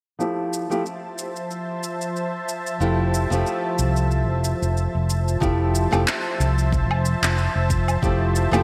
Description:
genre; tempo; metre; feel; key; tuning
sunset chillout; 92 BPM; 4/4; swing 55% on 16ths; F major; A4 = 440 Hz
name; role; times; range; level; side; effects
nylon-string guitar; accompaniment; 0.2-8.6 s; F3 to G4; -28 LUFS; equal; low-pass filter, digital delay
lush unison pad; sustained chords; 0.7-8.6 s; F3 to A5; -29 LUFS; equal; chorus
electronic shaker, woodblock and handclaps; drums; 0.2-8.6 s; none; -29 LUFS; equal; gated reverb
fingered electric bass; bass; 2.8-8.6 s; F1 to C2; -24 LUFS; equal; none
electronic kick drum; drums; 5.4-8.2 s; none; -27 LUFS; equal; none
room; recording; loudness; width
moderate lush hall reverb, RT60 2.7 s; bright 1980s-style digital production; -23 LUFS; mono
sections
0.2-5.4 A section; 5.4-8.6 B section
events
none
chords
0.2 Fmaj7

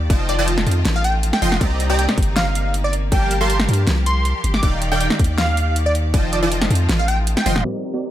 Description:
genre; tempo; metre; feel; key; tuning
future bass; 159 BPM; 4/4; half-time; unclear; A4 = 440 Hz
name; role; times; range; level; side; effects
clear studio string section; sustained chords; 0.0-8.1 s; C3 to D5; -31 LUFS; left 1 dB; sidechain pumping
long sustained 808-style bass; bass; 0.0-7.6 s; Eb1 to G2; -19 LUFS; equal; sidechain pumping
supersaw stab; riff; 0.1-8.1 s; Eb3 to C6; -24 LUFS; right 1 dB; analog chorus, sidechain pumping, low-pass filter
electronic kick drum; drums; 0.1-6.2 s; none; -18 LUFS; equal; none
pop drum kit; drums; 0.1-8.1 s; crash cymbal, hi-hat, snare drum, toms; -23 LUFS; equal; low-pass filter on hats, low-pass filter on cymbals, low-pass filter on snare, low-pass filter on toms
plucky unison lead; melody; 0.3-7.6 s; D5 to D6; -24 LUFS; right 1 dB; sidechain pumping, ping-pong delay
glassy digital keys; accompaniment; 7.6-8.1 s; G3 to Bb4; -30 LUFS; equal; chorus, sidechain pumping, digital delay
downlifter; sound effects; 8.1 s; none; barely audible; none; none
room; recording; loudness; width
digital ambience; low-pass filter; -16 LUFS; side -12 dB against mid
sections
0.0-7.6 A section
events
drop 0.0-7.6; drum fill 7.4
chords
0.1 F7; 1.6 Cm7; 3.1 Gm7; 4.6 Ebmaj7; 6.1 F7

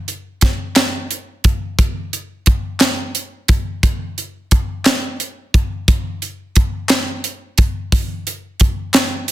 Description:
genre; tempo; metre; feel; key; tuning
gospel; 59 BPM (dotted quarters); 6/8; straight; none; none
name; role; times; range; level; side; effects
crisp fusion drum kit; drums; 0.1-9.3 s; hi-hat, kick drum, snare drum; -15 LUFS; equal; none
group handclap; percussion; 0.8-9.3 s; none; -23 LUFS; left 4 dB; none
room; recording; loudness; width
moderate large studio reverb, RT60 0.9 s, studio ambience; dense, heavily limited modern master; -16 LUFS; side -14 dB against mid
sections
0.0-9.3 A section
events
none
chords
none

